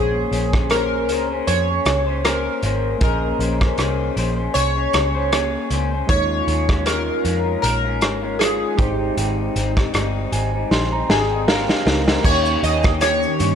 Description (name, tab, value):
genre	indie pop, bedroom pop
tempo	78 BPM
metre	4/4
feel	swing 55% on 16ths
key	Bb dorian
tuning	A4 = 442 Hz
part	chorused retro synth keys	melody	0.0-13.6 s	G4 to Eb5	-22 LUFS	equal	wide subtle chorus, analog delay
part	barky tine electric piano	accompaniment	0.0-13.6 s	Ab3 to C6	-28 LUFS	right 4 dB	cassette tape
part	electric guitar through a small old amp	accompaniment	0.0-13.6 s	Ab2 to C5	-26 LUFS	left 6 dB	wide subtle chorus, vibrato effect
part	vintage muted picked electric bass	bass	0.0-13.6 s	G1 to G2	-23 LUFS	equal	none
part	raw garage drum kit	drums	0.3-13.6 s	crash cymbal, hi-hat, kick drum, rim click, shaker, snare drum	-21 LUFS	equal	vintage 12-bit sampler grit
part	ethereal airy pad	sustained chords	13.1-13.6 s	Eb3 to G4	-26 LUFS	right 4 dB	ensemble chorus, built-in reverb, phaser
room	light reverb, small room reverb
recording	none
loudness	-17 LUFS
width	side -8 dB against mid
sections	0.0-12.2 A section; 12.2-13.6 B section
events	tine electric piano fill 9.9-12.2; drum fill 10.7-12.2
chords	0.0 Bbm9; 6.1 Eb9sus4; 8.8 Abmaj7; 12.2 Eb7